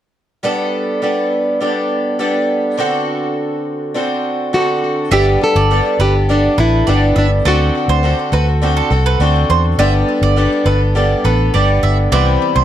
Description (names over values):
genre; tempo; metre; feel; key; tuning
acoustic pop; 103 BPM; 4/4; straight; G major; A4 = 441 Hz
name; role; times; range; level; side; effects
picked twelve-string acoustic guitar; accompaniment; 0.4-12.6 s; C3 to A4; -16 LUFS; equal; plate reverb
nylon-string guitar; melody; 4.5-8.6 s; D4 to A4; -16 LUFS; equal; plate reverb, ping-pong delay
bowl-back mandolin; arpeggios; 5.1-12.6 s; A4 to E5; -21 LUFS; right 8 dB; ping-pong delay
vintage muted fingered electric bass; bass; 5.1-12.6 s; G1 to E2; -14 LUFS; equal; none
room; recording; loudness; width
light reverb; dark, warm production; -12 LUFS; side -11 dB against mid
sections
0.4-5.1 A section; 5.1-12.6 B section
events
none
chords
0.4 Gadd9; 2.8 D7; 5.1 Gadd9; 7.5 D7; 9.8 Gadd9; 12.1 Cmaj7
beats
| 0.43 1.02 1.60 2.19 | 2.78 3.36 3.95 4.53 | 5.12 5.70 6.28 6.87 | 7.45 8.04 8.62 9.20 | 9.79 10.37 10.95 11.54 | 12.12